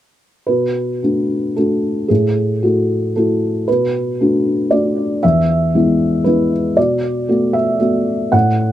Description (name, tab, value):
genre	neoclassical minimalist piano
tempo	115 BPM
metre	3/4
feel	rubato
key	B dorian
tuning	A4 = 440 Hz
part	felt-muted upright piano	solo	0.5-8.7 s	E2 to F#5	-14 LUFS	equal	slapback echo
room	little or no reverb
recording	recorded outdoors, with no room sound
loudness	-14 LUFS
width	side -12 dB against mid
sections	0.5-8.7 A section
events	none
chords	0.5 Bm7; 2.1 F#m7/A; 3.7 Bm7; 5.2 E; 6.8 Bm7